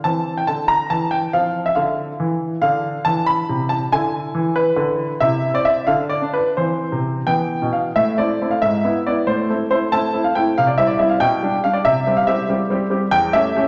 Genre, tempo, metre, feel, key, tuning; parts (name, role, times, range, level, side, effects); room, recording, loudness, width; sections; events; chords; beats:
classical-period piano sonatina; 93 BPM (dotted quarters); 6/8; rubato; A4 = 440 Hz
clear baby grand piano; solo; 0.0-13.7 s; E2 to B5; -19 LUFS; equal
wet recital hall reverb, RT60 1.6 s; -19 LUFS; mono
0.0-8.0 A section; 8.0-13.7 B section
0.0 C; 1.3 F5; 2.6 Dm; 3.9 E7/D; 5.2 Cadd9; 5.9 N.C.; 6.6 C; 7.3 E5; 8.0 Am; 8.6 E/G#; 9.3 Am; 10.6 C; 11.2 G/B; 11.8 C5; 13.1 A7/E
| 0.04 0.69 | 1.33 1.98 | 2.62 3.26 | 3.91 4.55 | 5.19 5.87 | 6.56 7.27 | 7.96 8.62 | 9.28 9.93 | 10.57 11.20 | 11.85 12.48 | 13.12